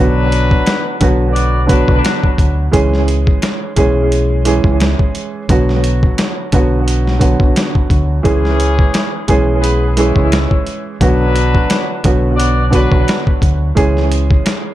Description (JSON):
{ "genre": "hip hop, boom-bap hip-hop", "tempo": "87 BPM", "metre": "4/4", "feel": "swing 56% on 16ths", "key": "B dorian", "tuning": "A4 = 440 Hz", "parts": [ { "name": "dark upright piano", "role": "accompaniment", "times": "0.0-14.7 s", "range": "D3 to G#4", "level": "-16 LUFS", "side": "right 2 dB", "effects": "cassette tape, high-pass filter, low-pass filter, tape echo" }, { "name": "mellow horn section", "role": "stabs", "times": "0.0-2.2, 8.2-13.2 s", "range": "E3 to D5", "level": "-20 LUFS", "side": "left 2 dB", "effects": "high-pass filter, low-pass filter, tape echo" }, { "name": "deep dub fingered electric bass", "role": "bass", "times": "0.0-14.4 s", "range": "B1 to D2", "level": "-15 LUFS", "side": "equal", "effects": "none" }, { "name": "boom bap sampler-style drum kit", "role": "drums", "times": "0.3-14.6 s", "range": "hi-hat, kick drum, snare drum", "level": "-15 LUFS", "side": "equal", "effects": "vintage 12-bit sampler grit" }, { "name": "finger snaps", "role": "percussion", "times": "0.7-14.6 s", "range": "none", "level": "-30 LUFS", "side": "left 6 dB", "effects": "none" } ], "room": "small room ambience", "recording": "echo-heavy mix", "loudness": "-11 LUFS", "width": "side -14 dB against mid", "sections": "0.0-14.7 A section", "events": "none", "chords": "0.0 Bm; 2.7 C#m; 5.5 Bm; 8.2 C#m; 11.0 Bm; 13.8 C#m" }